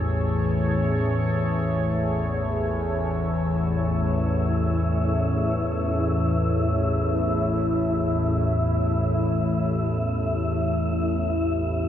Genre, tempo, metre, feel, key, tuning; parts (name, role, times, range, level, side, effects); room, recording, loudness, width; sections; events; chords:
dark ambient drone; free time; A major; A4 = 440 Hz
deep dark ambient pad; sustained chords; 0.0-11.9 s; A3 to C#5; -29 LUFS; equal; chorus, built-in reverb
analog drone; drone; 0.0-11.9 s; A1 to E2; -23 LUFS; left 1 dB; chorus
wind-like tuned noise texture; texture; 3.1-11.9 s; E4 to E5; -31 LUFS; equal; built-in reverb
wet cathedral reverb, RT60 6.0 s; small room ambience; -22 LUFS; side -10 dB against mid
0.0-11.9 A section
fade-in on ambient pad 0.0-11.9
0.0 A